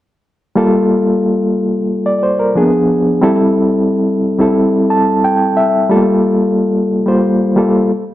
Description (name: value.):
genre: soul.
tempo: 90 BPM.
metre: 4/4.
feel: straight.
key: G dorian.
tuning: A4 = 440 Hz.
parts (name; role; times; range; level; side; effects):
reed electric piano; solo; 0.6-7.9 s; E#3 to A5; -11 LUFS; equal; overdrive, fast tremolo, slapback echo.
room: light reverb.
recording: none.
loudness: -11 LUFS.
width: side -14 dB against mid.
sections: 0.6-5.9 A section; 5.9-8.1 B section.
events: reed electric piano fill 4.6-5.9.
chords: 0.6 Gm9; 2.6 G#dim7; 3.2 Am7; 5.9 Gm9.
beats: | 0.56 1.23 1.90 2.56 | 3.23 3.90 4.56 5.23 | 5.90 6.56 7.23 7.90.